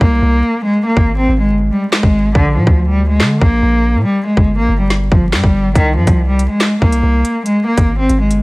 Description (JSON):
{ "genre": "hip hop, drill", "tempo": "141 BPM", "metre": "4/4", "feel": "half-time", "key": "unclear", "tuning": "A4 = 440 Hz", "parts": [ { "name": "dark cello", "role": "melody", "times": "0.0-8.3 s", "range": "D3 to C4", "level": "-14 LUFS", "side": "equal", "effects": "none" }, { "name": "long sustained 808-style bass", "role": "bass", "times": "0.0-8.4 s", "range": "G1 to D3", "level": "-15 LUFS", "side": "equal", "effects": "none" }, { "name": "drill drum kit", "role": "drums", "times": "0.0-8.4 s", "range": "handclaps, hi-hat, kick drum, snare drum", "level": "-12 LUFS", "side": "equal", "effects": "vintage 12-bit sampler grit" } ], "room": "small room ambience", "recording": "vinyl crackle", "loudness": "-11 LUFS", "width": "side -24 dB against mid", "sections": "0.0-8.4 A section", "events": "break 0.0-5.8", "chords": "0.0 C5; 0.6 N.C.; 2.4 Bb; 4.1 N.C.; 5.8 C5; 7.5 Abmaj7sus2" }